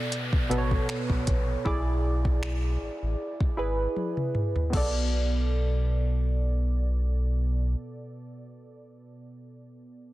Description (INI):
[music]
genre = contemporary R&B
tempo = 78 BPM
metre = 4/4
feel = swing 54% on 16ths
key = B dorian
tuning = A4 = 440 Hz
[part]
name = warm analog keys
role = accompaniment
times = 0.0-10.1 s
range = B2 to D5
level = -32 LUFS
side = right 1 dB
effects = chorus
[part]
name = downlifter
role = sound effects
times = 0.0-4.7 s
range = none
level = -40 LUFS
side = equal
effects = none
[part]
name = smooth R&B drum kit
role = drums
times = 0.1-4.9 s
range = crash cymbal, finger snaps, hi-hat, kick drum, toms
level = -28 LUFS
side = equal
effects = soft clipping on snare
[part]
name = sub bass with octave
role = bass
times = 0.5-7.8 s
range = G#1 to B1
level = -26 LUFS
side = equal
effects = none
[sound]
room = digital ambience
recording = dense, heavily limited modern master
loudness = -25 LUFS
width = side -17 dB against mid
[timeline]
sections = 0.0-4.7 A section; 4.7-7.8 B section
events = drum fill 4.0-4.7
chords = 0.0 Bm7; 1.7 E7; 4.7 Bm7